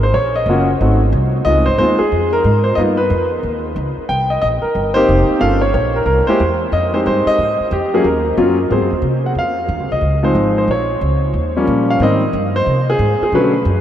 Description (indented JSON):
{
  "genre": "jazz piano trio",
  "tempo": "182 BPM",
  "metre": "4/4",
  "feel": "swing 63% on 8ths",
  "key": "unclear",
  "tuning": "A4 = 440 Hz",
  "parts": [
    { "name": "warm concert grand piano", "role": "melody", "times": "0.0-13.8 s", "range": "D3 to G5", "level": "-14 LUFS", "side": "equal", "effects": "none" },
    { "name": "upright bass", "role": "bass", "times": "0.0-13.8 s", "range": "F1 to C3", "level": "-18 LUFS", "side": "equal", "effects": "none" }
  ],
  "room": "wet huge ambient reverb, RT60 7.3 s",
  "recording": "in a vast, echoing space",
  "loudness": "-13 LUFS",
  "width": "side -10 dB against mid",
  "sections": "0.0-9.4 A section; 9.4-13.8 B section",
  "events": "none",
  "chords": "0.1 Ebm9; 0.8 Ab7b9; 1.5 Dbmaj9 (rootless); 2.8 G7b13; 4.1 Cm7; 5.4 Gm7b5; 6.1 C7; 6.7 Fm9; 8.1 Ebm7; 8.7 Ab9; 9.4 Dbmaj9; 10.7 Bbm; 11.3 Eb7; 12.0 Abmaj7",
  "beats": "| 0.14 0.47 0.80 1.13 | 1.46 1.79 2.12 2.45 | 2.78 3.11 3.44 3.77 | 4.10 4.42 4.75 5.08 | 5.41 5.74 6.07 6.40 | 6.73 7.06 7.39 7.72 | 8.05 8.38 8.71 9.04 | 9.37 9.70 10.03 10.36 | 10.69 11.02 11.35 11.68 | 12.01 12.34 12.67 13.00 | 13.33 13.66"
}